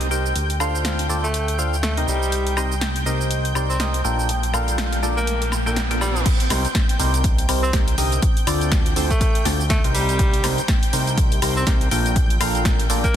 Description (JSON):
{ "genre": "piano house", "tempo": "122 BPM", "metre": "4/4", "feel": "swing 58% on 16ths", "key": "C dorian", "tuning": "A4 = 440 Hz", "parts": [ { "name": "analog string pad", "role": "sustained chords", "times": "0.0-13.2 s", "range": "G5 to G6", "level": "-30 LUFS", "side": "left 1 dB", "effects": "ensemble chorus, sidechain pumping" }, { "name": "percussive organ stab", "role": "riff", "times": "0.0-13.1 s", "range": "Bb2 to G5", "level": "-25 LUFS", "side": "equal", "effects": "chorus, phaser, sidechain pumping, tape echo" }, { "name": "fat analog bass", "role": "bass", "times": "0.0-13.1 s", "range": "Bb1 to D2", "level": "-23 LUFS", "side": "equal", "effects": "sidechain pumping" }, { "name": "house drum kit", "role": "drums", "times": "0.0-13.1 s", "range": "cabasa, crash cymbal, hi-hat, snare drum, woodblock", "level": "-26 LUFS", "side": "equal", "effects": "small room ambience" }, { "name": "warm tenor saxophone", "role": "melody", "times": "1.2-13.2 s", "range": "G3 to C4", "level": "-28 LUFS", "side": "equal", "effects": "tape echo" }, { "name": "riser", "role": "sound effects", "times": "4.0-6.3 s", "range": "none", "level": "-32 LUFS", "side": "right 2 dB", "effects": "none" }, { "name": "electronic kick drum", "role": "drums", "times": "6.3-13.1 s", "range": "none", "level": "-20 LUFS", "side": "equal", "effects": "small room ambience" } ], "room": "light reverb", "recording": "dense, heavily limited modern master", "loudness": "-18 LUFS", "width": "side -10 dB against mid", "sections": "0.0-6.3 A section; 6.3-13.2 B section", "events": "riser 4.0-6.3; drop 6.3-13.2", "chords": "0.4 Dm7; 2.1 Cm7; 4.0 Bbmaj7; 6.3 Cm7; 8.2 Dm7; 9.9 Cm7; 11.9 Bbmaj7" }